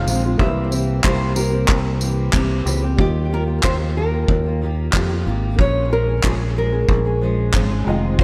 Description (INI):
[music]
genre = acoustic pop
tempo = 92 BPM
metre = 4/4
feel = straight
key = unclear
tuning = A4 = 440 Hz
[part]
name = nylon-string guitar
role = melody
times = 0.0-8.2 s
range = G4 to F5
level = -27 LUFS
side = equal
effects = slapback echo, digital delay
[part]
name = felt-muted upright piano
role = accompaniment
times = 0.0-8.2 s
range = G3 to Eb5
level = -33 LUFS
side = equal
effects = none
[part]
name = fingerpicked steel-string acoustic guitar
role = accompaniment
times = 0.0-8.2 s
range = F2 to Ab4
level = -27 LUFS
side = equal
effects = double-tracked, slapback echo
[part]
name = fingered electric bass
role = bass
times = 0.0-8.2 s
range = F1 to F2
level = -23 LUFS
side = equal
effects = none
[part]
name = loose indie drum kit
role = drums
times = 0.1-8.2 s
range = handclaps, kick drum, tambourine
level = -22 LUFS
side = equal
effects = none
[sound]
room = light reverb, small room reverb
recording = none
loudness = -19 LUFS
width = mono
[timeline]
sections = 0.0-3.0 A section; 3.0-8.2 B section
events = none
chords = 0.4 C7; 3.0 Ebadd9; 5.6 Bbm7